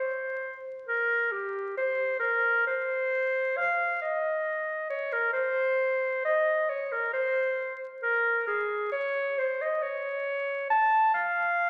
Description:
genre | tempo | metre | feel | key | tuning
classical, baroque-style fantasia for unaccompanied clarinet | 67 BPM | 4/4 | rubato | unclear | A4 = 441 Hz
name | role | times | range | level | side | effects
warm clarinet | solo | 0.0-11.7 s | G4 to A5 | -28 LUFS | equal | none
room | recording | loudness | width
wet recital hall reverb, RT60 1.6 s | very old 78 rpm record, vinyl crackle | -28 LUFS | mono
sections
0.0-11.7 A section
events
none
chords
none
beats
0.88 | 1.77 2.67 3.57 4.47 | 5.36 6.25 7.14 8.03 | 8.93 9.82 10.71 11.60

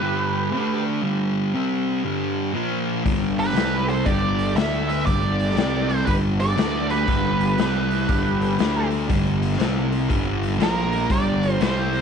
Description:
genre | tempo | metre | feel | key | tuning
blues rock power trio and southern rock | 119 BPM | 4/4 | swing 65% on 8ths | G major | A4 = 439 Hz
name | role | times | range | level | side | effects
bluesy overdriven lead guitar | melody | 0.0-12.0 s | Bb4 to E5 | -26 LUFS | right 2 dB | wah, distortion
bluesy overdriven lead guitar | second line | 0.0-12.0 s | F4 to B4 | -33 LUFS | right 13 dB | distortion
fuzz guitar | riff | 0.0-12.0 s | G2 to D4 | -23 LUFS | equal | distortion
fuzz fingered electric bass | bass | 3.1-12.0 s | G1 to D2 | -26 LUFS | equal | overdrive
raw garage drum kit | drums | 3.1-12.0 s | hi-hat, kick drum, snare drum | -26 LUFS | left 3 dB | none
room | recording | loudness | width
light reverb, small room ambience | 1960s-style stereo | -19 LUFS | side -6 dB against mid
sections
0.0-12.0 A section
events
none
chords
0.0 G; 0.5 D5; 1.0 G5; 1.5 C5; 2.0 G5; 2.5 Bb5; 3.1 G; 3.6 C5; 4.1 G5; 4.6 D5; 5.1 G5; 5.6 C5; 6.1 G5; 6.6 D5; 7.1 G; 7.6 C5; 8.1 G; 8.6 D5; 9.1 G5; 9.6 C5; 10.1 G5; 10.6 Bb5; 11.1 G5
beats
0.02 0.53 | 1.03 1.54 2.04 2.55 | 3.05 3.56 4.06 4.57 | 5.07 5.57 6.08 6.58 | 7.08 7.59 8.09 8.59 | 9.10 9.60 10.10 10.60 | 11.11 11.61

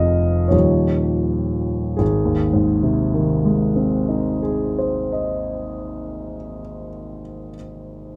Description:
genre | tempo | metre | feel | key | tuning
classical, romantic character piece for solo piano | 44 BPM | 3/4 | rubato | Ab major | A4 = 440 Hz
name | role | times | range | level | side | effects
warm concert grand piano | solo | 0.0-8.2 s | Eb1 to F5 | -21 LUFS | equal | none
room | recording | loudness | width
light reverb | dark, warm production | -20 LUFS | mono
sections
0.0-2.0 A section; 2.0-6.1 B section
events
slowing down 0.0-2.0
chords
0.0 Fm; 0.5 Eb9; 2.0 Ab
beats
0.52 | 2.00 3.38 4.74

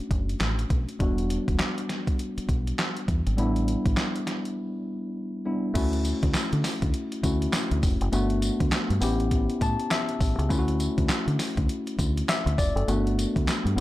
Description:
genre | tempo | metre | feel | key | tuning
R&B, new jack swing | 101 BPM | 4/4 | swing 61% on 16ths | D major | A4 = 439 Hz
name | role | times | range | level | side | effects
tine electric piano | accompaniment | 0.0-13.8 s | G3 to A5 | -28 LUFS | left 2 dB | none
deep dub fingered electric bass | bass | 0.0-13.8 s | E1 to D3 | -26 LUFS | equal | none
crisp 8-bit digital drum machine | drums | 0.1-13.8 s | crash cymbal, handclaps, hi-hat, kick drum, snare drum, tambourine | -27 LUFS | equal | overdrive
room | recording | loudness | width
little or no reverb | none | -24 LUFS | side -16 dB against mid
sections
0.0-5.8 A section; 5.8-13.8 B section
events
break 4.6-5.8; tine electric piano fill 9.3-10.5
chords
0.0 Bm7; 1.0 Em9; 3.4 A9sus4; 5.8 Dmaj7; 8.1 Gmaj7; 9.0 A7; 10.5 Dmaj7; 12.9 Gmaj7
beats
0.41 | 1.00 1.59 2.19 2.78 | 3.38 3.97 4.56 5.16 | 5.75 6.35 6.94 7.53 | 8.13 8.72 9.32 9.91 | 10.50 11.10 11.69 12.29 | 12.88 13.47

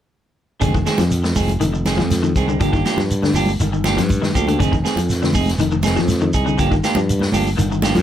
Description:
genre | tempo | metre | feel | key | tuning
afrobeat | 121 BPM | 4/4 | straight | F dorian | A4 = 441 Hz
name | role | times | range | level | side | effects
electric guitar at the edge of break-up | arpeggios | 0.6-8.0 s | D3 to F3 | -22 LUFS | left 4 dB | ensemble chorus
semi-hollow electric guitar | stabs | 0.6-8.0 s | Eb3 to Ab4 | -22 LUFS | right 4 dB | none
modern bright fingered electric bass | bass | 0.6-8.0 s | F1 to G2 | -20 LUFS | equal | none
vintage drum kit | drums | 0.6-8.0 s | hi-hat, kick drum, snare drum | -23 LUFS | equal | none
shekere | percussion | 0.6-8.0 s | none | -26 LUFS | right 2 dB | none
congas | percussion | 1.0-8.0 s | none | -25 LUFS | right 2 dB | none
room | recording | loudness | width
light reverb | none | -15 LUFS | side -10 dB against mid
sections
0.6-8.0 A section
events
none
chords
0.6 Fm7; 2.6 Gm7; 4.6 Fm7; 6.6 Gm7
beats
| 0.62 1.11 1.61 2.11 | 2.61 3.10 3.60 4.10 | 4.60 5.10 5.59 6.09 | 6.59 7.08 7.58

